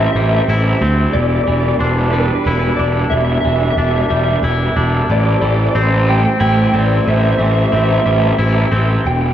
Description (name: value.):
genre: rock.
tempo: 61 BPM (dotted quarters).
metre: 6/8.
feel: straight.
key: unclear.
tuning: A4 = 437 Hz.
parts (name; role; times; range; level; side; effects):
electric guitar through a small old amp; melody; 0.0-9.3 s; B4 to G5; -19 LUFS; equal; analog chorus, tape echo.
muted studio string section; sustained chords; 0.0-9.3 s; E3 to C5; -22 LUFS; right 3 dB; none.
twangy electric guitar; arpeggios; 0.0-9.3 s; E2 to E4; -20 LUFS; equal; tape echo.
fuzz picked electric bass; bass; 0.0-9.3 s; E1 to D2; -15 LUFS; equal; overdrive.
room: moderate plate reverb, RT60 2.5 s.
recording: dreamy mix soaked in reverb, small room ambience.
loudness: -12 LUFS.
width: side -10 dB against mid.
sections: 0.0-9.1 A section.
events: none.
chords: 0.0 Am7; 1.1 Em7; 5.1 Am7.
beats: 0.15 | 1.14 2.12 | 3.11 4.10 | 5.09 6.08 | 7.07 8.06 | 9.05.